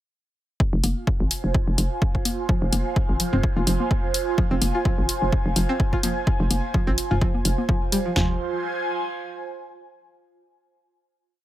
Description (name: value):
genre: minimal techno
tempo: 127 BPM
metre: 4/4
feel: swing 55% on 16ths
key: F minor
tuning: A4 = 443 Hz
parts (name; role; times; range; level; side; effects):
- house drum kit; drums; 0.6-8.3 s; kick drum, snare drum, toms; -23 LUFS; equal; none
- airy breathy pad; texture; 1.0-10.0 s; F4 to Ab5; -28 LUFS; right 3 dB; chorus, phaser, sidechain pumping
- hollow knocking FM bass; bass; 0.7-8.4 s; F1 to Ab1; -24 LUFS; equal; sidechain pumping
- electronic hi-hat; drums; 0.8-8.0 s; none; -26 LUFS; left 2 dB; none
- electronic congas and toms; percussion; 0.8-7.7 s; none; -29 LUFS; left 2 dB; none
- string-like resonator pluck; riff; 2.5-8.4 s; F3 to F4; -28 LUFS; equal; chorus, sidechain pumping, digital delay
room: little or no reverb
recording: none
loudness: -20 LUFS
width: side -14 dB against mid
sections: 0.6-8.2 groove; 8.2-10.0 final chord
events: none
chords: 0.6 Fm